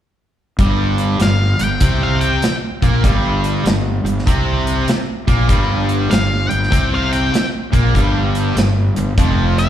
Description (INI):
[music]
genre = blues rock power trio and southern rock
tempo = 98 BPM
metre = 4/4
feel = swing 65% on 8ths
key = G minor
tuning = A4 = 441 Hz
[part]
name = distorted electric guitar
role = riff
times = 0.6-9.7 s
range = F2 to C4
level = -18 LUFS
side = equal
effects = overdrive
[part]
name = fuzz fingered electric bass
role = bass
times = 0.6-9.7 s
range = F1 to C2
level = -18 LUFS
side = equal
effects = overdrive
[part]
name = big rock drum kit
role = drums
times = 0.6-9.7 s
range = hi-hat, kick drum, snare drum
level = -18 LUFS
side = equal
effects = none
[part]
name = octave-fuzz lead guitar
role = melody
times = 1.2-9.7 s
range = F5 to G5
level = -22 LUFS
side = left 2 dB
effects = distortion, slapback echo, tape echo
[sound]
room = light reverb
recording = live gig heard through the venue's PA, recital hall reverb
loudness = -14 LUFS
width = side -11 dB against mid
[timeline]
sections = 0.6-9.7 A section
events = none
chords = 0.6 Gm